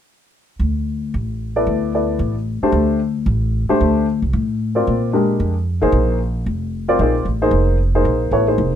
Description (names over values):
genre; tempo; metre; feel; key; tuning
modal jazz; 226 BPM; 4/4; swing 58% on 8ths; unclear; A4 = 441 Hz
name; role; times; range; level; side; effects
upright bass; bass; 0.6-8.8 s; F1 to Bb2; -18 LUFS; equal; none
warm upright piano; accompaniment; 1.6-8.7 s; Ab3 to D5; -17 LUFS; left 1 dB; none
room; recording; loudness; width
light reverb; close, detailed microphones; -16 LUFS; side -9 dB against mid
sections
0.6-8.8 A section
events
none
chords
0.6 D13sus4; 4.9 Bb9sus4